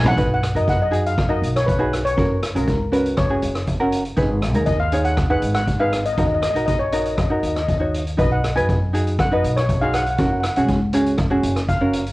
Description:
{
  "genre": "calypso",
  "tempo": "120 BPM",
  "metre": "4/4",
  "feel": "straight",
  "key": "unclear",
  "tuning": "A4 = 438 Hz",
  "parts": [
    { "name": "steel pan", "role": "melody", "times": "0.0-12.1 s", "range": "A#4 to G#5", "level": "-23 LUFS", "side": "left 1 dB", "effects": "cassette tape" },
    { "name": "ukulele", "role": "accompaniment", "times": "0.0-12.0 s", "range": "C#4 to C#5", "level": "-22 LUFS", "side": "right 1 dB", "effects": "none" },
    { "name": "upright bass", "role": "bass", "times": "0.0-12.1 s", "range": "F#1 to F#2", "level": "-23 LUFS", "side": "equal", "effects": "none" },
    { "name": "street-band drum kit", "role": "drums", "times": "0.1-12.1 s", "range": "hi-hat, kick drum, rim click, toms", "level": "-23 LUFS", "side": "equal", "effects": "none" }
  ],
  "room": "moderate studio reverb, RT60 0.5 s",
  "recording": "home recording on cassette",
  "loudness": "-17 LUFS",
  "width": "side -19 dB against mid",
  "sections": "0.2-12.1 A section",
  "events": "drum fill 0.0",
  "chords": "0.2 B; 2.2 F#; 4.2 G#m; 6.2 D#m; 8.2 B; 10.2 F#"
}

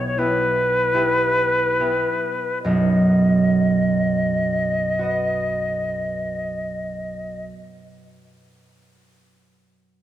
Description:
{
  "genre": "classical, romantic duo for flute and harp",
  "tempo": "25 BPM (dotted quarters)",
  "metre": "6/8",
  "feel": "rubato",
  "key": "B major",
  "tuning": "A4 = 440 Hz",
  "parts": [
    { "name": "silver concert flute", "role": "melody", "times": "0.0-7.4 s", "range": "B4 to D#5", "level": "-21 LUFS", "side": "left 1 dB", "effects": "none" },
    { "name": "concert harp", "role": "accompaniment", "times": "0.0-8.9 s", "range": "B1 to D#5", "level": "-21 LUFS", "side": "right 2 dB", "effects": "none" }
  ],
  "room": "moderate concert hall reverb, RT60 2.1 s",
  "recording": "none",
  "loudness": "-18 LUFS",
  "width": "side -12 dB against mid",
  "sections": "0.0-2.6 A section; 2.6-7.4 B section",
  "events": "slowing down 0.0-2.6",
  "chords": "0.0 Em/B; 2.6 B"
}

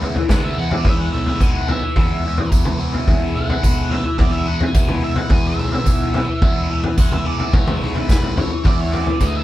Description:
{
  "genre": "psychedelic rock",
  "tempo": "108 BPM",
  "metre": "4/4",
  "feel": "straight",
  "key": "E mixolydian",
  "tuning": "A4 = 440 Hz",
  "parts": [
    { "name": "biting overdriven guitar", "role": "riff", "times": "0.0-9.4 s", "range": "E3 to E4", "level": "-23 LUFS", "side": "left 1 dB", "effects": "phaser" },
    { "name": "fuzz picked electric bass", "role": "bass", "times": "0.0-9.4 s", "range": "B1 to E2", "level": "-24 LUFS", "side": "equal", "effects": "overdrive" },
    { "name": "deep rumbling drone", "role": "drone", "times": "4.1-9.4 s", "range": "none", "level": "barely audible", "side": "none", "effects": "none" },
    { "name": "vintage drum kit", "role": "drums", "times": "0.0-9.3 s", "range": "kick drum, snare drum, toms", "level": "-18 LUFS", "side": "equal", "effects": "none" },
    { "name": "octave-fuzz lead guitar", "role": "melody", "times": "0.3-9.4 s", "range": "B4 to G#5", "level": "-28 LUFS", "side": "right 2 dB", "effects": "distortion" },
    { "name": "tambourine", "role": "percussion", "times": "0.3-9.3 s", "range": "none", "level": "-36 LUFS", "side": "right 8 dB", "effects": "none" }
  ],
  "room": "light reverb",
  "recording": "band playing live in one room",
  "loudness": "-15 LUFS",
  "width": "side -15 dB against mid",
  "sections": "0.0-9.4 A section",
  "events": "lead electric guitar solo 0.0-9.4; drum fill 9.2",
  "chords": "0.0 E"
}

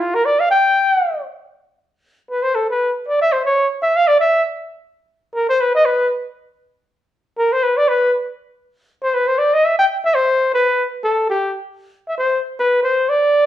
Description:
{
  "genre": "jazz",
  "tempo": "237 BPM",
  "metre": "4/4",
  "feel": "swing 59% on 8ths",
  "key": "C major",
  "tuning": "A4 = 440 Hz",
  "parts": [
    { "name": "breathy flugelhorn", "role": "solo", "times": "0.0-13.5 s", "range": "F4 to G5", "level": "-14 LUFS", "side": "equal", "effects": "none" }
  ],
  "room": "wet large studio reverb, RT60 0.9 s",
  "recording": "band playing live in one room",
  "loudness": "-15 LUFS",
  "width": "side -12 dB against mid",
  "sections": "0.0-2.0 A section; 2.0-10.1 A section; 10.1-13.5 B section",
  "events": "flugelhorn solo 0.0-10.1",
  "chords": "none"
}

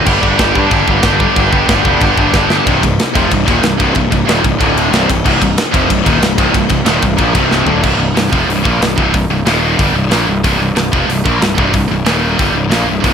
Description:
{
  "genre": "heavy metal",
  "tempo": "185 BPM",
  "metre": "4/4",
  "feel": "straight",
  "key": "C minor",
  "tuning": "A4 = 439 Hz",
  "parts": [
    { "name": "chamber organ, sparkling flutes", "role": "sustained chords", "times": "0.0-7.8 s", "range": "C3 to D5", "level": "-26 LUFS", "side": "left 1 dB", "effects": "none" },
    { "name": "fuzz guitar", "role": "riff", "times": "0.0-7.8, 13.0-13.1 s", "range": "C2 to Bb3", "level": "-18 LUFS", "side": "left 1 dB", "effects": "distortion" },
    { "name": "heavy high-gain guitar", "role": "riff", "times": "0.0-13.1 s", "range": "C2 to Bb3", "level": "-17 LUFS", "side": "left 15 dB", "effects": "distortion" },
    { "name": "scooped high-gain guitar", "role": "riff", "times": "0.0-13.1 s", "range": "C2 to G4", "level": "-16 LUFS", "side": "right 11 dB", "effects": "distortion" },
    { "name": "fuzz picked electric bass", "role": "bass", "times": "0.1-13.1 s", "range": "C1 to G2", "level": "-17 LUFS", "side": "equal", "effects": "overdrive" },
    { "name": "tight metal drum kit", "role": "drums", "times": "0.1-13.1 s", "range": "china cymbal, crash cymbal, hi-hat, kick drum, ride cymbal, snare drum, toms", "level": "-15 LUFS", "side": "equal", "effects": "none" }
  ],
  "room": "studio ambience",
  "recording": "none",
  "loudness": "-10 LUFS",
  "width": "side -7 dB against mid",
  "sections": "0.0-2.7 A section; 2.7-7.8 B section; 7.8-13.1 C section",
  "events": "drum fill 2.3-2.7, 7.5-7.8",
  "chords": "0.1 G; 2.7 Cm; 4.6 D5; 4.9 Cm; 7.8 C5; 9.5 Eb5; 9.8 C5; 12.0 Eb5; 12.4 C5"
}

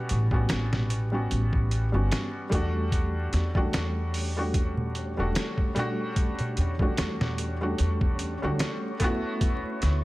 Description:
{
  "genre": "trip hop",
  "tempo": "74 BPM",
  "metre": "4/4",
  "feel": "swing 55% on 16ths",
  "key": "E dorian",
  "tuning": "A4 = 440 Hz",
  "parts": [
    { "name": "felt-muted upright piano", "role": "accompaniment", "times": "0.0-10.0 s", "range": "G3 to F#4", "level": "-30 LUFS", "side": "equal", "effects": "harmonic tremolo, tape echo" },
    { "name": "upright bass", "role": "bass", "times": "0.1-10.0 s", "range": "E1 to E2", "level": "-27 LUFS", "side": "equal", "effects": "none" },
    { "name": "trip hop sampler-style drum kit", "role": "drums", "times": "0.1-10.0 s", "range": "hi-hat, kick drum, snare drum", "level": "-28 LUFS", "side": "equal", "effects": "none" },
    { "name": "darbuka", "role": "percussion", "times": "0.5-8.8 s", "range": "none", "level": "-35 LUFS", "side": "right 1 dB", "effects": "none" },
    { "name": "wind-like tuned noise texture", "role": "texture", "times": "3.5-10.0 s", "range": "C#4 to C#5", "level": "-41 LUFS", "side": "equal", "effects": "built-in reverb" }
  ],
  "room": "small room reverb",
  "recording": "vinyl crackle",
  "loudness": "-25 LUFS",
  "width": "side -19 dB against mid",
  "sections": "0.0-10.0 A section",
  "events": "none",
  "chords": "0.0 A13; 2.9 Em11; 9.4 D69"
}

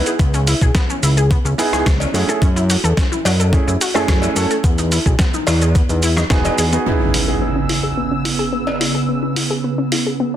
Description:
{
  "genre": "nu-disco, nu disco",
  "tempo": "108 BPM",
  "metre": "4/4",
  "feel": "straight",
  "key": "C# minor",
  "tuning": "A4 = 440 Hz",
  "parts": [
    { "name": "clear concert grand piano", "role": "accompaniment", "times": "0.0-10.4 s", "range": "C#3 to A4", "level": "-21 LUFS", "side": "right 3 dB", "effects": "vintage 12-bit sampler grit, sidechain pumping, digital delay" },
    { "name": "wide unison pluck", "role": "arpeggios", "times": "0.1-10.4 s", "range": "B3 to D#5", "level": "-23 LUFS", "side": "left 3 dB", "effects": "sidechain pumping, digital delay" },
    { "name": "dusty soul sampler-style drum kit", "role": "drums", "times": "0.1-10.0 s", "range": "cabasa, hi-hat, rim click, snare drum", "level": "-22 LUFS", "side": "right 1 dB", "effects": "none" },
    { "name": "fat analog bass", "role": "bass", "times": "0.2-6.8 s", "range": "E1 to F#2", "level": "-17 LUFS", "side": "equal", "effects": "tube saturation" },
    { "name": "electronic kick drum", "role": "drums", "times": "0.2-6.4 s", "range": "none", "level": "-16 LUFS", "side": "equal", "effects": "none" },
    { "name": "cowbell", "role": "percussion", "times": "2.0-8.8 s", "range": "none", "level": "-27 LUFS", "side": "left 2 dB", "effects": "none" },
    { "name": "lush unison pad", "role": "sustained chords", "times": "6.9-10.4 s", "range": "C#3 to E6", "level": "-20 LUFS", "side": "right 2 dB", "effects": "chorus, sidechain pumping" },
    { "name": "impact", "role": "sound effects", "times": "6.9-9.1 s", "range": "none", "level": "-23 LUFS", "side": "equal", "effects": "none" }
  ],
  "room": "light reverb, digital ambience",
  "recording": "dense, heavily limited modern master",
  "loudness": "-14 LUFS",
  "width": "side -11 dB against mid",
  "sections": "0.0-6.9 A section; 6.9-10.4 B section",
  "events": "impact 6.9-9.1; filter sweep on analog synth pad 6.9-10.4; filter sweep on synth arpeggio sound 6.9-10.4",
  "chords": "0.0 C#m7; 2.1 F#m7; 4.6 Emaj7; 6.9 C#m7"
}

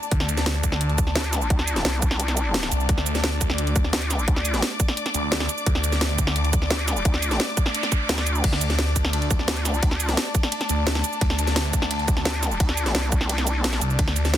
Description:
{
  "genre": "dark technical drum and bass",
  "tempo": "173 BPM",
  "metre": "4/4",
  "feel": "straight",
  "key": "unclear",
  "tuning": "A4 = 440 Hz",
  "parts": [
    { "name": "drum and bass drum kit", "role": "drums", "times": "0.0-14.4 s", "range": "crash cymbal, hi-hat, ride cymbal, shaker, snare drum", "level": "-25 LUFS", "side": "right 1 dB", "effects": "soft clipping on snare" },
    { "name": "warm studio string section", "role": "texture", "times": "0.0-14.4 s", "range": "A3 to D6", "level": "-29 LUFS", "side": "left 2 dB", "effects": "sidechain pumping" },
    { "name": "phased detuned saw bass", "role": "bass", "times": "0.1-14.4 s", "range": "C2 to D2", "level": "-24 LUFS", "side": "equal", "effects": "phaser, overdrive, sidechain pumping" },
    { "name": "electronic kick drum", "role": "drums", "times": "0.1-14.1 s", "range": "none", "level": "-22 LUFS", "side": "equal", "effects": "overdrive" },
    { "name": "vowel-sweep wobble bass", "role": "bass", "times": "1.2-4.6, 6.7-10.2, 12.3-13.8 s", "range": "C2 to D2", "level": "-24 LUFS", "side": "equal", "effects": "chorus" },
    { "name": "noise sweep", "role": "sound effects", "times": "7.5-8.4 s", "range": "none", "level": "-33 LUFS", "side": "right 5 dB", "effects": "none" }
  ],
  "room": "little or no reverb",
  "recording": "dense, heavily limited modern master",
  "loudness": "-20 LUFS",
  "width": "side -11 dB against mid",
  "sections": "0.0-14.4 A section",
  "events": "noise sweep 7.5-8.4; kick drops out 8.1-8.4",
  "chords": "0.0 D5"
}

